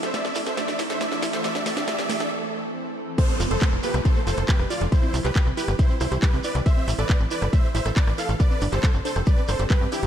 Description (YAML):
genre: uplifting trance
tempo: 138 BPM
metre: 4/4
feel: straight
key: A minor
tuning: A4 = 440 Hz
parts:
  - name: supersaw chords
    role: melody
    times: 0.0-10.1 s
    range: E4 to F5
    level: -29 LUFS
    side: right 1 dB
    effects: sidechain pumping, digital delay
  - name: shimmering ambient pad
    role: sustained chords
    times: 0.0-10.1 s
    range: C3 to A4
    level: -35 LUFS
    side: right 2 dB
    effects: chorus, built-in reverb, sidechain pumping
  - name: wide unison pluck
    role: arpeggios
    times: 0.0-10.1 s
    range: G3 to A4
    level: -33 LUFS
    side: right 2 dB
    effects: sidechain pumping, digital delay
  - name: house drum kit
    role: drums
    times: 0.0-10.1 s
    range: crash cymbal, handclaps, hi-hat, rim click, snare drum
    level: -32 LUFS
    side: equal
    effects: high-pass filter on hats, high-pass filter on snare, high-pass filter on cymbals, high-pass filter on room
  - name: shekere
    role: percussion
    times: 0.0-10.1 s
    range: none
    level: -39 LUFS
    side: right 4 dB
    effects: none
  - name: riser and downlifter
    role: sound effects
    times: 0.0-6.7 s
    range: none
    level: -33 LUFS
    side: right 2 dB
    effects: none
  - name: wide unison pluck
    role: second line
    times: 3.2-10.1 s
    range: G4 to F5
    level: -36 LUFS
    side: right 1 dB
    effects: none
  - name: electronic kick drum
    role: drums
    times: 3.2-9.8 s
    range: none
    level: -20 LUFS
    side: equal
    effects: none
  - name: tight sequencer bass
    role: bass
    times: 3.4-10.1 s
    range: F1 to G2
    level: -25 LUFS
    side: equal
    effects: sidechain pumping
room: light reverb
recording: dark, warm production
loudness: -20 LUFS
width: side -10 dB against mid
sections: 0.0-3.2 A section; 3.2-10.1 B section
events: build-up 0.0-3.2; drum fill 0.0-2.3; riser 0.0-2.3; break 2.3-3.2; drop 3.2-10.1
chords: 0.0 Am; 3.2 F; 4.9 C; 6.7 Am; 8.4 Gsus4